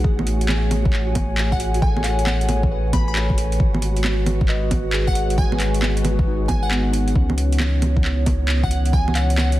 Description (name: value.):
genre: future garage.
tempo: 135 BPM.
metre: 4/4.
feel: swing 65% on 16ths.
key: C# minor.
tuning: A4 = 440 Hz.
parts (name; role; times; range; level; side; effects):
muted felt-like synth keys; accompaniment; 0.0-9.6 s; B3 to D#5; -30 LUFS; left 2 dB; chorus, sidechain pumping, tape echo.
dark analog pad; sustained chords; 0.0-9.6 s; E3 to G#5; -27 LUFS; right 1 dB; lush chorus, sidechain pumping.
warm sub bass; bass; 0.0-9.6 s; G#1 to C#2; -21 LUFS; equal; sidechain pumping.
electronic kick drum; drums; 0.0-9.0 s; none; -20 LUFS; equal; overdrive.
flickering grainy texture; texture; 0.0-9.6 s; F#4; -35 LUFS; right 4 dB; built-in reverb.
garage drum kit; drums; 0.2-9.6 s; bongos, handclaps, hi-hat; -25 LUFS; right 1 dB; overdrive.
glassy wavetable pluck; melody; 1.5-9.6 s; F#5 to B5; -30 LUFS; left 1 dB; chorus, tape echo.
room: little or no reverb.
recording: dense, heavily limited modern master, vinyl crackle.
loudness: -17 LUFS.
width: side -15 dB against mid.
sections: 0.0-9.6 A section.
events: none.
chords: 0.0 Amaj7; 3.6 G#m7; 7.2 C#m7.